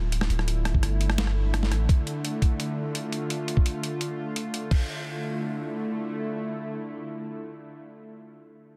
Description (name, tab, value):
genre	half-time drum and bass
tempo	170 BPM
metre	4/4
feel	half-time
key	D minor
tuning	A4 = 440 Hz
part	bowed-like drone	sustained chords	0.0-8.1 s	D3 to F4	-34 LUFS	equal	built-in reverb, sidechain pumping
part	long sustained 808-style bass	bass	0.0-1.9 s	D1 to A1	-27 LUFS	equal	none
part	boom bap sampler-style drum kit	drums	0.1-4.8 s	crash cymbal, hi-hat, rim click, snare drum	-35 LUFS	equal	soft clipping on snare
part	electronic kick drum	drums	0.7-4.8 s	none	-24 LUFS	equal	none
room	light reverb, digital ambience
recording	dense, heavily limited modern master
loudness	-28 LUFS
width	mono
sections	0.0-4.7 A section; 4.7-7.5 B section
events	none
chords	0.0 Dm; 4.7 D5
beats	0.12 | 0.48 0.83 1.18 1.53 | 1.89 2.24 2.59 2.95 | 3.30 3.65 4.01 4.36 | 4.71 5.06 5.42 5.77 | 6.12 6.48 6.83 7.18